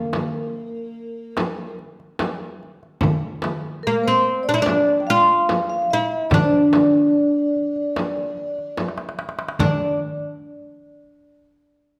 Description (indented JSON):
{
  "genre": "Turkish makam ensemble",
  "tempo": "73 BPM",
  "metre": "4/4",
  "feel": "straight",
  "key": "D makam ussak",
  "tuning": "A4 = 438 Hz",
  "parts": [
    { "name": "oud", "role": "melody", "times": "0.0-10.0 s", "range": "Bb3 to F4", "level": "-22 LUFS", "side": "equal", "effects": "none" },
    { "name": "vibraphone with medium mallets", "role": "second line", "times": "0.0-10.0 s", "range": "Bb4 to G5", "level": "-27 LUFS", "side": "equal", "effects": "none" },
    { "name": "darbuka", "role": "percussion", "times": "0.1-10.0 s", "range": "none", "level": "-28 LUFS", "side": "equal", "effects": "none" },
    { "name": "frame drum", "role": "percussion", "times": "0.1-10.0 s", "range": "none", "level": "-28 LUFS", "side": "equal", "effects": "none" }
  ],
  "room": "wet recital hall reverb, RT60 1.4 s",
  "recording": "none",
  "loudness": "-20 LUFS",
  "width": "mono",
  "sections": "0.0-9.6 A section; 9.6-12.0 B section",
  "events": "drum fill 8.8-9.6",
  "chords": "none",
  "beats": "0.54 1.37 2.19 | 3.02 3.84 4.66 5.49 | 6.31 7.14 7.96 8.78 | 9.61"
}